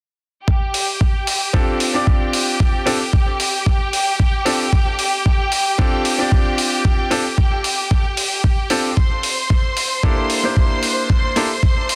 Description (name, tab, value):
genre	nu-disco, nu disco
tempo	113 BPM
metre	4/4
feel	straight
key	F major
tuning	A4 = 440 Hz
part	bright studio violin section	sustained chords	0.5-12.0 s	G4 to C6	-25 LUFS	equal	sidechain pumping, low-pass filter
part	electronic kick drum	drums	0.5-11.7 s	none	-18 LUFS	equal	overdrive, small room reverb
part	electronic hi-hat	drums	0.7-12.0 s	none	-26 LUFS	equal	overdrive, small room reverb
part	bright grand piano	accompaniment	1.5-11.5 s	Bb3 to D5	-24 LUFS	equal	sidechain pumping, low-pass filter, dub echo
room	light reverb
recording	dense, heavily limited modern master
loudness	-18 LUFS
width	mono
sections	0.5-12.0 A section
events	none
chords	0.5 F69; 9.0 C13